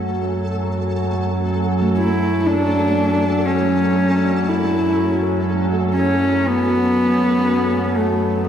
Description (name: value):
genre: dark ambient drone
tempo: free time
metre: none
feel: none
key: F# minor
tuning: A4 = 439 Hz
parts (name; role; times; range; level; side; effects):
- deep dark ambient pad; sustained chords; 0.0-8.5 s; F#4 to G#5; -27 LUFS; right 3 dB; chorus, built-in reverb, shimmer reverb
- gamelan-type bossed gongs; arpeggios; 0.0-7.8 s; F#2 to A3; -32 LUFS; right 2 dB; none
- analog drone; drone; 0.0-8.5 s; F#2 to F#3; -20 LUFS; equal; chorus
- flickering grainy texture; texture; 0.0-8.5 s; A3 to A4; -27 LUFS; right 1 dB; built-in reverb, shimmer reverb
- warm horsehead fiddle; melody; 2.0-8.5 s; A3 to E4; -18 LUFS; equal; shimmer reverb, dub echo
room: wet spring reverb, RT60 2.4 s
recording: echo-heavy mix, faint mains hum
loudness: -16 LUFS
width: side -9 dB against mid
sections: 0.0-8.5 A section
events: fade-in on ambient pad 0.0-8.5; fade-in on synth texture 0.0-8.5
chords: 0.0 F#m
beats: free time